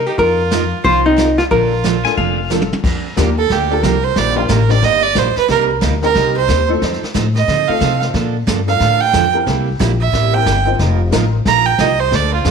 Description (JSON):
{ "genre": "country, western swing", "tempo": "181 BPM", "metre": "4/4", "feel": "swing 62% on 8ths", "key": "Bb major", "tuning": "A4 = 440 Hz", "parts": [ { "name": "archtop guitar, miked and amplified", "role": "melody", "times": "0.0-2.5 s", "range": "Eb4 to C5", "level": "-14 LUFS", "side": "left 2 dB", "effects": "none" }, { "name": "clear fiddle", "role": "second line", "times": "0.0-12.5 s", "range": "C4 to Bb5", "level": "-16 LUFS", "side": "right 9 dB", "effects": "none" }, { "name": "upright bass", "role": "bass", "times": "0.0-12.5 s", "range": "F1 to D3", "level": "-18 LUFS", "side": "left 2 dB", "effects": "none" }, { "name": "picked steel-string acoustic guitar", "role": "accompaniment", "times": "0.2-12.5 s", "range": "C3 to Bb4", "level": "-21 LUFS", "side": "right 11 dB", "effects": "none" }, { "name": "vintage brush drum kit", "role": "drums", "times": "0.2-12.5 s", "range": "brushed snare drum, crash cymbal, hi-hat, kick drum, snare drum, toms", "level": "-22 LUFS", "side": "left 2 dB", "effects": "none" }, { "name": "pedal steel guitar", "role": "second line", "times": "2.0-2.5 s", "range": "F5 to Ab5", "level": "-20 LUFS", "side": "left 12 dB", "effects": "none" }, { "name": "honky-tonk upright piano", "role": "accompaniment", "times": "2.0-11.3 s", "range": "F3 to C5", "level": "-23 LUFS", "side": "left 14 dB", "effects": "none" } ], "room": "light reverb, small room reverb", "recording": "1960s-style stereo with parts hard left and right", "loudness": "-12 LUFS", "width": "side -6 dB against mid", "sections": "0.0-2.8 A section; 2.8-12.5 B section", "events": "drum fill 2.5-2.8; fiddle solo 2.8-12.5", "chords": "0.2 F7sus4; 1.5 Bbmaj7; 2.8 Bb6; 4.2 Ebmaj7; 5.5 Cm7; 6.8 F7; 8.1 Bbmaj7; 9.5 C7; 10.8 F7sus4" }